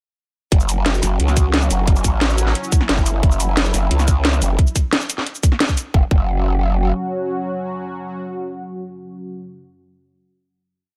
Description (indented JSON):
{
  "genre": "dark technical drum and bass",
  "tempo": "177 BPM",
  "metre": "4/4",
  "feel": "straight",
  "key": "unclear",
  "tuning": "A4 = 438 Hz",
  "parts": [
    { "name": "sweeping resonant pad", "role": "sustained chords", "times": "0.5-9.4 s", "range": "F#3 to F#4", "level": "-28 LUFS", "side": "equal", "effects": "chorus, sidechain pumping" },
    { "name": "growl bass", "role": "bass", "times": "0.5-6.9 s", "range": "F#1 to C#2", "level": "-20 LUFS", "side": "equal", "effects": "chorus, overdrive" },
    { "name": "drum and bass drum kit", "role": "drums", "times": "0.5-5.8 s", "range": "hi-hat, shaker, snare drum", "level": "-23 LUFS", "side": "equal", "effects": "none" },
    { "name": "electronic kick drum", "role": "drums", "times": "0.5-6.2 s", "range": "none", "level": "-18 LUFS", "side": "equal", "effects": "none" }
  ],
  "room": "little or no reverb",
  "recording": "none",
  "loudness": "-18 LUFS",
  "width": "mono",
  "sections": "0.5-5.9 drop; 5.9-8.7 final chord",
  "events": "drop 0.5-5.9",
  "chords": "0.5 F#5"
}